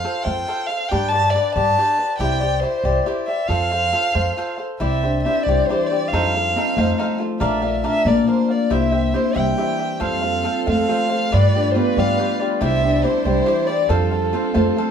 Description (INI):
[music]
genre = mexican folk, mariachi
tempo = 92 BPM (dotted quarters)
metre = 6/8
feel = rubato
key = F major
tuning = A4 = 440 Hz
[part]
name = dark violin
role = melody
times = 0.0-14.8 s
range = A4 to A5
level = -21 LUFS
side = equal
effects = none
[part]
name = cavaquinho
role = accompaniment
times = 0.0-14.9 s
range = D4 to F5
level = -24 LUFS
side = left 3 dB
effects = none
[part]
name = upright bass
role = bass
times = 0.0-14.7 s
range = Bb1 to G2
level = -22 LUFS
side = right 2 dB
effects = none
[part]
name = Celtic harp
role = arpeggios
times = 4.8-14.9 s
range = E3 to F5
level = -22 LUFS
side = left 1 dB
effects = none
[part]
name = warm symphonic violin section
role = sustained chords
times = 10.0-14.9 s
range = G3 to C5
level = -27 LUFS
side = right 1 dB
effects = none
[sound]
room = wet studio ambience, RT60 0.5 s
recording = band playing live in one room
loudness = -17 LUFS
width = side -7 dB against mid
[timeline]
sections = 0.0-14.9 A section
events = none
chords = 0.0 F; 0.9 G; 2.2 Cadd9; 3.5 F; 4.8 Cadd9; 6.1 F7; 7.4 Bb; 8.7 C; 10.0 F; 11.3 G7; 12.6 Cadd9; 13.9 F